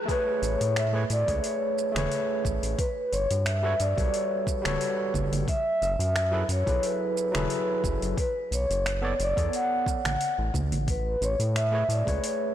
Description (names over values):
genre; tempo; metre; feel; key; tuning
sunset chillout; 89 BPM; 4/4; swing 54% on 16ths; A major; A4 = 440 Hz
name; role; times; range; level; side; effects
vibraphone with soft mallets; melody; 0.1-12.5 s; B4 to F#5; -28 LUFS; equal; tape echo
overdriven tine electric piano; accompaniment; 0.1-12.5 s; F#3 to D5; -32 LUFS; moving between left 3 dB and right 4 dB; auto-pan, digital delay
deep house drum kit; drums; 0.1-12.4 s; congas, finger snaps, hi-hat, shaker; -33 LUFS; right 2 dB; overdrive, soft clipping on snare
electronic kick drum; drums; 0.1-12.2 s; none; -30 LUFS; equal; none
round analog bass; bass; 0.4-12.2 s; D1 to A2; -28 LUFS; equal; none
room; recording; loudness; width
moderate concert hall reverb, RT60 2.2 s; blown-out, overdriven recording, overdrive; -24 LUFS; side -11 dB against mid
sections
0.1-12.5 A section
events
band accent 0.0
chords
0.1 Amaj9; 2.8 Gmaj9#11; 5.5 F#m11; 8.2 Bm9; 10.9 Amaj9